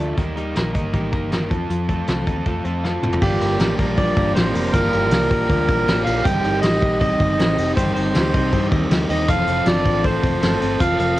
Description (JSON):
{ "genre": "jangly indie pop", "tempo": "158 BPM", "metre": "4/4", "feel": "straight", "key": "G minor", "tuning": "A4 = 440 Hz", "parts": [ { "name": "overdriven electric guitar", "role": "accompaniment", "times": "0.0-11.2 s", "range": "G2 to Bb4", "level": "-26 LUFS", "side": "right 3 dB", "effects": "cassette tape" }, { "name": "twelve-string electric guitar", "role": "arpeggios", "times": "0.0-11.2 s", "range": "G2 to G4", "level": "-25 LUFS", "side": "left 4 dB", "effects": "cassette tape" }, { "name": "vintage muted fingered electric bass", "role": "bass", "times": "0.0-11.2 s", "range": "F1 to G2", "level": "-25 LUFS", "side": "equal", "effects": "none" }, { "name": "soft brush drum kit", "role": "drums", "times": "0.2-11.2 s", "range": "crash cymbal, hi-hat, kick drum, ride cymbal, snare drum, toms", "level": "-21 LUFS", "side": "equal", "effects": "none" }, { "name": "melodica", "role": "melody", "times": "3.2-11.2 s", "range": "G4 to G5", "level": "-22 LUFS", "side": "right 1 dB", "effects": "cassette tape" }, { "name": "vibraphone with hard mallets", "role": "second line", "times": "3.2-11.2 s", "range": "G3 to G4", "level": "-28 LUFS", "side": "right 4 dB", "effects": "cassette tape" } ], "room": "light reverb", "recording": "home recording on cassette", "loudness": "-17 LUFS", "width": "side -16 dB against mid", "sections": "0.0-3.2 A section; 3.2-11.2 B section", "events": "drum fill 2.8-3.2", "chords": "0.2 Eb; 1.5 F; 3.2 Gm7; 9.3 F", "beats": "| 0.18 0.56 0.94 1.32 | 1.70 2.08 2.46 2.84 | 3.22 3.60 3.98 4.36 | 4.74 5.12 5.50 5.88 | 6.25 6.63 7.01 7.39 | 7.77 8.15 8.53 8.91 | 9.29 9.66 10.04 10.42 | 10.80 11.18" }